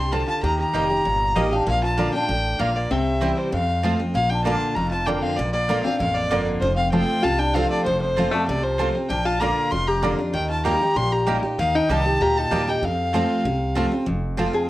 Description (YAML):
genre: bluegrass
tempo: 194 BPM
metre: 4/4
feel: straight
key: unclear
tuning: A4 = 443 Hz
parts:
  - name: clear fiddle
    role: melody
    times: 0.0-13.8 s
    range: C5 to C6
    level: -24 LUFS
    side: left 1 dB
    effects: plate reverb
  - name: lap resonator guitar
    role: second line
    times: 0.0-14.7 s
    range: F3 to Ab4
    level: -27 LUFS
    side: left 2 dB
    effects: none
  - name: picked steel-string acoustic guitar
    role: accompaniment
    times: 0.0-14.7 s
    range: F2 to G4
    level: -24 LUFS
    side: equal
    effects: none
  - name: upright bass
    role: bass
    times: 0.0-14.5 s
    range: F1 to F2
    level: -27 LUFS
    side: equal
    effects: none
  - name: mandolin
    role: stabs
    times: 0.1-14.5 s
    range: Bb3 to Bb5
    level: -29 LUFS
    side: right 3 dB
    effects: none
room: moderate studio reverb, RT60 0.7 s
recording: worn, warbling old tape, cassette tape, warbly pitch drift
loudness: -19 LUFS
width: side -16 dB against mid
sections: 0.0-4.1 A section; 4.1-14.1 B section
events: none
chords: 0.4 Eb; 1.7 Bb; 2.9 C; 3.5 F; 4.1 Bb; 6.6 F; 9.1 Bb; 10.3 Eb; 12.8 F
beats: 0.12 | 0.43 0.74 1.05 1.36 | 1.67 1.98 2.29 2.60 | 2.91 3.22 3.53 3.84 | 4.14 4.45 4.76 5.07 | 5.38 5.69 6.00 6.31 | 6.62 6.93 7.24 7.55 | 7.86 8.17 8.48 8.79 | 9.10 9.41 9.72 10.03 | 10.34 10.65 10.96 11.27 | 11.58 11.89 12.21 12.52 | 12.83 13.14 13.45 13.76 | 14.07 14.38